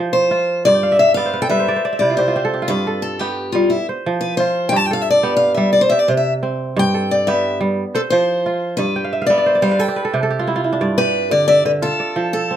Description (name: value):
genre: west african traditional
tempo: 118 BPM (dotted quarters)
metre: 12/8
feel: straight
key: G mixolydian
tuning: A4 = 440 Hz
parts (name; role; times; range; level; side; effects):
- kora; arpeggios; 0.0-12.6 s; G2 to G5; -19 LUFS; right 2 dB; none
- picked steel-string acoustic guitar; melody; 0.1-12.6 s; E4 to A5; -16 LUFS; left 1 dB; none
room: light reverb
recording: close, detailed microphones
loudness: -15 LUFS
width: side -10 dB against mid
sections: 0.0-10.8 A section; 10.8-12.6 B section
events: steel-string acoustic guitar solo 0.0-10.8; kora fill 0.7-2.7, 9.0-10.8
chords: 0.0 F5; 0.7 G; 1.7 N.C.; 2.7 G; 3.7 F5; 4.7 G; 5.7 C5; 6.8 G; 7.8 F5; 8.8 G; 9.8 N.C.; 10.8 G; 11.8 F